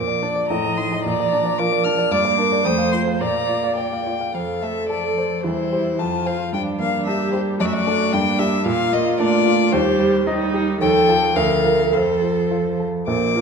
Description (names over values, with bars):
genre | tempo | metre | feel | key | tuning
quick classical-period movement for piano quartet | 110 BPM | 2/4 | rubato | Bb major, F major from 4.3 s | A4 = 440 Hz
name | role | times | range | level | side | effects
warm violin | melody | 0.0-13.4 s | C5 to F6 | -23 LUFS | left 7 dB | none
warm cello | second line | 0.0-12.9 s | F3 to Bb3 | -26 LUFS | right 4 dB | none
dark viola | accompaniment | 0.0-13.4 s | Bb3 to Eb5 | -22 LUFS | right 2 dB | none
warm baby grand piano | accompaniment | 0.0-13.4 s | Bb1 to F5 | -22 LUFS | right 1 dB | none
room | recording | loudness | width
wet recital hall reverb, RT60 1.5 s | minimal, uncompressed stereo recording | -17 LUFS | side -5 dB against mid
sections
0.0-4.3 A section; 4.3-13.1 B section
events
none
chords
0.0 Bb; 0.5 F7/A; 1.0 Bb; 2.1 Gm; 2.7 F7; 3.2 Bb; 4.3 F; 5.4 C/E; 6.0 F; 6.5 Gm; 7.6 D/F#; 8.1 Gm; 8.7 Bb; 9.7 Cm/Eb; 10.8 F7/Eb; 11.4 Bb/D; 11.9 F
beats
0.50 | 1.05 1.58 | 2.12 2.65 | 3.21 3.78 | 4.34 4.90 | 5.45 5.99 | 6.53 7.06 | 7.60 8.13 | 8.66 9.19 | 9.72 10.26 | 10.81 11.36 | 11.93 12.51 | 13.08